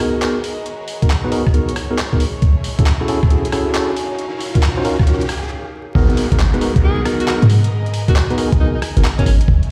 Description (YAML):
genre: UK garage, two-step garage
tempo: 136 BPM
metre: 4/4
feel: swing 66% on 16ths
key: G# minor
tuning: A4 = 440 Hz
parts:
  - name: rich symphonic violin section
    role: sustained chords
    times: 0.0-9.7 s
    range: G#3 to G#5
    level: -36 LUFS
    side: equal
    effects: sidechain pumping
  - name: tine electric piano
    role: stabs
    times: 0.0-9.3 s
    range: B3 to B#4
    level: -23 LUFS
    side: equal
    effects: low-pass filter, tape echo
  - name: boom bap sampler-style drum kit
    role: drums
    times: 0.0-9.7 s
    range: handclaps, hi-hat, rim click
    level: -28 LUFS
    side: equal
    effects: high-pass filter on snare, high-pass filter on hats
  - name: riser and downlifter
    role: sound effects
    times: 0.2-9.5 s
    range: none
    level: -33 LUFS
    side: equal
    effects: none
  - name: warbly tape-like pad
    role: texture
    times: 0.0-9.7 s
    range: D#4 to A#5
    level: -33 LUFS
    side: equal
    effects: chorus, built-in reverb, phaser, sidechain pumping
  - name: electronic kick drum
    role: drums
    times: 1.0-9.6 s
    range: none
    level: -17 LUFS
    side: equal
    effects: none
  - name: short 808-style bass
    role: bass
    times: 6.0-9.6 s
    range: D#1 to G#2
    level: -16 LUFS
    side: equal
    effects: none
  - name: bright alto saxophone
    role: melody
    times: 6.8-9.4 s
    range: C#4 to G#4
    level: -28 LUFS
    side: equal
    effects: tape echo
room: digital ambience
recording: played on a big sound system in a bare room, large studio reverb, vinyl crackle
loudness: -16 LUFS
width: mono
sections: 0.0-6.0 A section; 6.0-9.7 B section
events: build-up 0.0-6.0; filter sweep on tine electric piano 0.0-6.0; riser 0.2-5.5; stop 5.5-6.0; drop 6.0-9.7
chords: 0.0 G#m9; 2.4 F#m9; 4.0 D#m9; 6.0 G#m9